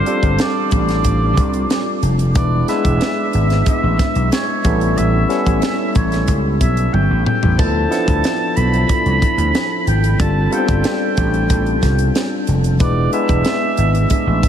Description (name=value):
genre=polished 1980s jazz-funk pop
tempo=92 BPM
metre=4/4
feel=straight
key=unclear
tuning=A4 = 442 Hz
part: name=clear oboe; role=melody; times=0.0-14.5 s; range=C5 to B5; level=-22 LUFS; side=right 1 dB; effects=analog delay
part: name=barky tine electric piano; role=accompaniment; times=0.0-14.5 s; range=F3 to B4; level=-20 LUFS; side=left 1 dB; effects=medium stereo tremolo, wide subtle chorus
part: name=tight funk drum kit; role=drums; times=0.1-14.5 s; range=hi-hat, kick drum, snare drum, splash cymbal, toms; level=-20 LUFS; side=equal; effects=none
part: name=vintage slap bass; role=bass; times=0.2-14.4 s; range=E1 to D2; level=-17 LUFS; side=equal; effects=none
room=moderate huge ambient reverb, RT60 7.0 s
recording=dreamy mix soaked in reverb, lossy compression artefacts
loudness=-14 LUFS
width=side -9 dB against mid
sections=0.0-14.5 A section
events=drum fill 6.9-7.6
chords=0.0 G9sus4; 2.4 E7; 4.6 A9; 7.6 Dm69; 10.2 G9sus4; 12.8 E7